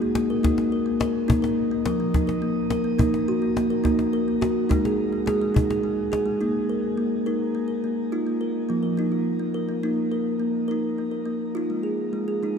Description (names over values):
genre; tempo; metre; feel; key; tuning
world meditative, meditative tuned percussion; 70 BPM (dotted quarters); 6/8; straight; unclear; A4 = 439 Hz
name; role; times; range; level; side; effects
kalimba; arpeggios; 0.0-12.6 s; F3 to Bb4; -22 LUFS; equal; shimmer reverb
cajon; percussion; 0.0-6.3 s; none; -27 LUFS; left 1 dB; none
room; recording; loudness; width
wet church reverb, RT60 3.8 s; dark, warm production; -22 LUFS; side -6 dB against mid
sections
0.0-6.4 A section; 6.4-12.6 B section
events
none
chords
0.0 Eb5; 1.3 Bb5; 3.0 Ebm; 4.7 Ab5; 6.4 Eb5; 8.1 Bb5; 9.8 Eb5; 11.6 Ab5